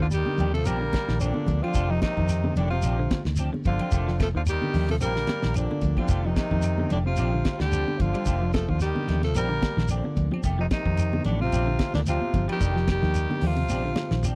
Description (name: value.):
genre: afrobeat.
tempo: 110 BPM.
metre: 4/4.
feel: swing 54% on 16ths.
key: F mixolydian.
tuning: A4 = 440 Hz.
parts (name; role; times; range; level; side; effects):
raspy tenor saxophone; melody; 0.0-14.3 s; D4 to Bb4; -33 LUFS; equal; none.
brilliant trombone; second line; 0.0-14.2 s; A2 to G3; -39 LUFS; equal; none.
warm baritone saxophone; second line; 0.0-14.2 s; D3 to Bb3; -40 LUFS; equal; none.
clean electric guitar; arpeggios; 0.0-14.3 s; C3 to G3; -34 LUFS; equal; spring reverb.
vintage muted fingered electric bass; bass; 0.0-14.3 s; F1 to F2; -28 LUFS; equal; none.
damped 70s drum kit; drums; 0.0-14.4 s; hi-hat, kick drum, ride cymbal, snare drum, toms; -31 LUFS; equal; none.
semi-hollow electric guitar; stabs; 0.1-14.4 s; Eb3 to G4; -37 LUFS; equal; ensemble chorus.
claves; percussion; 0.1-14.4 s; none; -46 LUFS; equal; none.
shekere; percussion; 0.1-14.4 s; none; -33 LUFS; equal; none.
congas; percussion; 0.3-14.1 s; none; -34 LUFS; equal; none.
room: little or no reverb.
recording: dry, close 1970s-style studio recording.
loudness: -25 LUFS.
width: mono.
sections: 0.0-14.4 A section.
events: none.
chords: 0.0 F13 (rootless); 0.7 Bb69; 1.8 F13; 2.8 Bb69; 3.9 F13; 5.0 Bb69; 6.1 F13; 7.2 Bb69; 8.3 F13; 9.4 Bb69; 10.4 F13; 11.5 Bb69; 12.6 F13; 13.7 Bb69.